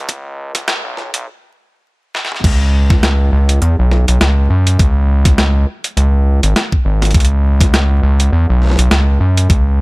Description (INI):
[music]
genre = glitch hop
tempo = 102 BPM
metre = 4/4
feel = swing 57% on 16ths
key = C# minor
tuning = A4 = 440 Hz
[part]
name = gritty driven synth bass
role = bass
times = 0.0-9.8 s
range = G#1 to F#2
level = -12 LUFS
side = equal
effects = high-pass filter
[part]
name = boom bap sampler-style drum kit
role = drums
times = 0.1-9.6 s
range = crash cymbal, hi-hat, snare drum, toms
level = -18 LUFS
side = equal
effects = overdrive
[part]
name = electronic kick drum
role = drums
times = 0.1-9.6 s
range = none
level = -12 LUFS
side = equal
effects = none
[sound]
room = little or no reverb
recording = vinyl crackle, high-pass filter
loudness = -11 LUFS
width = side -25 dB against mid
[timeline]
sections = 0.0-2.4 A section; 2.4-9.8 B section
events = build-up 0.0-2.4; stop 1.3-2.4; drum fill 2.1; drop 2.4-9.8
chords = none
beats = | 0.09 0.68 1.26 1.85 | 2.44 3.03 3.62 4.21 | 4.79 5.38 5.97 6.56 | 7.15 7.74 8.32 8.91 | 9.50